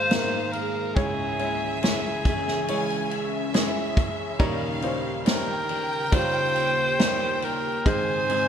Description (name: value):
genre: pop ballad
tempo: 70 BPM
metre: 4/4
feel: straight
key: unclear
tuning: A4 = 440 Hz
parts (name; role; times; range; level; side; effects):
- clear alto saxophone; melody; 0.0-8.5 s; Ab4 to C5; -26 LUFS; equal; none
- rich studio violin section; second line; 0.0-8.5 s; Fb5 to Ab5; -33 LUFS; right 1 dB; none
- warm concert grand piano; accompaniment; 0.0-8.5 s; Db2 to Db5; -30 LUFS; equal; analog chorus
- glassy FM pad; sustained chords; 0.0-8.5 s; Eb2 to C5; -35 LUFS; left 3 dB; ensemble chorus, built-in reverb
- fingerpicked steel-string acoustic guitar; arpeggios; 0.0-8.5 s; Ab2 to Bb4; -36 LUFS; right 7 dB; analog chorus
- unplugged drum kit; drums; 0.1-8.5 s; kick drum, ride cymbal, snare drum; -27 LUFS; equal; gated reverb
room: moderate plate reverb, RT60 2.7 s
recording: bright 1980s-style digital production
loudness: -22 LUFS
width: side -8 dB against mid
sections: 0.0-8.5 A section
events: none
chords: 0.0 Absus2; 1.0 Dbmadd9; 4.4 Eb7; 7.9 Abmaj7